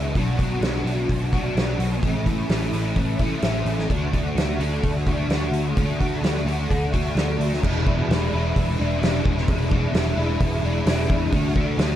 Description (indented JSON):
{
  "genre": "rock, shoegaze and dream pop",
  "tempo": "129 BPM",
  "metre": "4/4",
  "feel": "straight",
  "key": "E mixolydian",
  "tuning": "A4 = 440 Hz",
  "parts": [
    { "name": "crunchy overdriven guitar", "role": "riff", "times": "0.0-12.0 s", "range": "E2 to F#4", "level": "-24 LUFS", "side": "equal", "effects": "ensemble chorus" },
    { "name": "vintage muted picked electric bass", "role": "bass", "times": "0.0-12.0 s", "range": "E1 to E2", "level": "-25 LUFS", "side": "equal", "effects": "none" },
    { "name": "loose indie drum kit", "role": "drums", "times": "0.2-11.9 s", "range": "crash cymbal, hi-hat, kick drum, snare drum", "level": "-24 LUFS", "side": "equal", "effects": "none" }
  ],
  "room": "small room ambience",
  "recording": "dark, warm production",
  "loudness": "-20 LUFS",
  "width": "side -11 dB against mid",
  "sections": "0.0-7.6 A section; 7.6-12.0 B section",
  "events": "none",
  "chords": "0.1 Bm; 2.0 A; 3.9 D; 7.6 E5; 11.3 D"
}